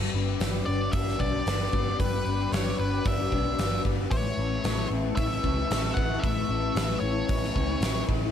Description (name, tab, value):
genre	rock, shoegaze and dream pop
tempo	113 BPM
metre	4/4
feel	straight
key	G lydian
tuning	A4 = 440 Hz
part	warm analog pad	sustained chords	0.0-8.3 s	B4 to D6	-38 LUFS	left 1 dB	chorus
part	picked twelve-string acoustic guitar	arpeggios	0.0-8.3 s	E3 to D4	-36 LUFS	left 11 dB	analog chorus, slapback echo
part	electric guitar through a small old amp	riff	0.0-8.3 s	A2 to E4	-37 LUFS	right 13 dB	reverse reverb
part	thick fuzz guitar	riff	0.0-8.3 s	G3 to B4	-32 LUFS	left 12 dB	distortion, ensemble chorus
part	vintage muted picked electric bass	bass	0.0-8.3 s	G1 to C#2	-30 LUFS	equal	none
part	gated 80s drum kit	drums	0.4-8.2 s	hi-hat, kick drum, snare drum	-30 LUFS	right 1 dB	none
part	octave-fuzz lead guitar	melody	0.7-8.0 s	B4 to F#5	-32 LUFS	equal	distortion, slapback echo
room	light reverb, small room ambience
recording	none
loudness	-24 LUFS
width	side -9 dB against mid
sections	0.0-8.3 A section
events	none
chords	0.0 G; 4.1 Aadd9